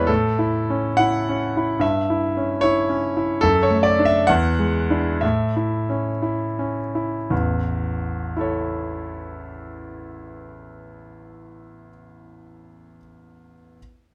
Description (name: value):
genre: classical, romantic character piece for solo piano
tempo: 54-75 BPM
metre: 2/4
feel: rubato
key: A major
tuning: A4 = 440 Hz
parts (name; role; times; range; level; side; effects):
- clear concert grand piano; solo; 0.0-13.8 s; A1 to F#5; -22 LUFS; equal; none
room: light reverb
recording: close, detailed microphones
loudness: -21 LUFS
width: mono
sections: 0.0-7.3 A section; 7.3-11.6 B section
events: slowing down 2.6-7.3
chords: 0.1 A; 1.8 C#dim/G; 3.4 D/F#; 4.3 E7; 5.2 A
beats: | 0.08 0.99 | 1.82 2.62 | 3.43 4.28 | 5.22 6.23 | 7.31 8.37 | 9.41 10.49